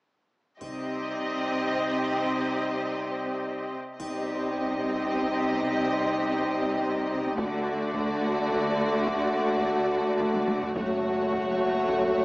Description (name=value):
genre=cinematic, epic orchestral film score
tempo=71 BPM (dotted quarters)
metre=6/8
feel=straight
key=unclear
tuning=A4 = 440 Hz
part: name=rich chamber violin section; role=melody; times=0.6-12.2 s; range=C#5 to Eb5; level=-33 LUFS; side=equal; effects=none
part: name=rich symphonic violin section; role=second line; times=0.6-12.2 s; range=F#4 to G4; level=-33 LUFS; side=equal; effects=none
part: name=rich symphonic viola section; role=accompaniment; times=0.6-12.2 s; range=A3 to C4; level=-32 LUFS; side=equal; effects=none
part: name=mellow French horn section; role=sustained chords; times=0.6-12.2 s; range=G3 to F#4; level=-29 LUFS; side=equal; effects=none
part: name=rich symphonic cello section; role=bass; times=0.6-12.2 s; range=F#2 to D3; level=-34 LUFS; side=right 1 dB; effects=none
part: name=warm symphonic double bass section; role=bass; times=0.6-1.1, 4.0-12.2 s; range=F#1 to D2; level=-39 LUFS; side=equal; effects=none
part: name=taiko ensemble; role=drums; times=0.6-12.2 s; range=none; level=-39 LUFS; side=equal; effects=none
part: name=triangle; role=percussion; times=0.6-5.1 s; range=none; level=-54 LUFS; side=equal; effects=none
room=wet scoring stage reverb, RT60 1.6 s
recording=small speaker sound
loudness=-25 LUFS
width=side -22 dB against mid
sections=0.6-4.0 A section; 4.0-12.2 B section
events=drum fill 10.3-10.8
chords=0.6 Cm; 7.4 D; 10.8 F#m